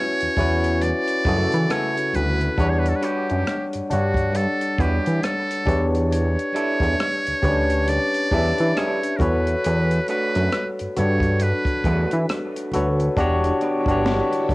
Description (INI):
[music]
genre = R&B, neo-soul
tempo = 68 BPM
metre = 4/4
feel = swing 59% on 16ths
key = E dorian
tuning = A4 = 441 Hz
[part]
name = trumpet with metal mute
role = melody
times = 0.0-12.3 s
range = F#4 to D5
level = -25 LUFS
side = right 1 dB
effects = cassette tape
[part]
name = barky tine electric piano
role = accompaniment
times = 0.0-14.5 s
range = C#3 to F#5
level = -23 LUFS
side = left 1 dB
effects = cassette tape
[part]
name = fat analog bass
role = bass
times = 0.2-14.5 s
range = E1 to E3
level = -22 LUFS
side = equal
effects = none
[part]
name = compact cocktail drum kit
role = drums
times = 0.2-14.5 s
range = hi-hat, kick drum, rim click, snare drum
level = -27 LUFS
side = equal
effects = cassette tape
[part]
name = congas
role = percussion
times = 0.4-14.5 s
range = none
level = -37 LUFS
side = right 2 dB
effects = none
[part]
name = electric guitar through a small old amp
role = second line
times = 0.8-14.0 s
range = G3 to B4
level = -32 LUFS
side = right 3 dB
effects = cassette tape, analog delay
[part]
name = phased string machine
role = sustained chords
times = 13.2-14.5 s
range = D3 to E4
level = -34 LUFS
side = right 3 dB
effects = ensemble chorus, phaser, cassette tape
[sound]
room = light reverb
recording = home recording on cassette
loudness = -19 LUFS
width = side -21 dB against mid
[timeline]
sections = 0.0-13.2 A section; 13.2-14.5 B section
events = none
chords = 0.0 Dmaj7; 2.6 Em9; 5.7 A7sus4; 9.2 Gmaj9/E; 13.2 Em7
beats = 0.81 1.70 | 2.58 3.46 4.34 5.22 | 6.11 6.99 7.87 8.75 | 9.64 10.52 11.40 12.28 | 13.17 14.05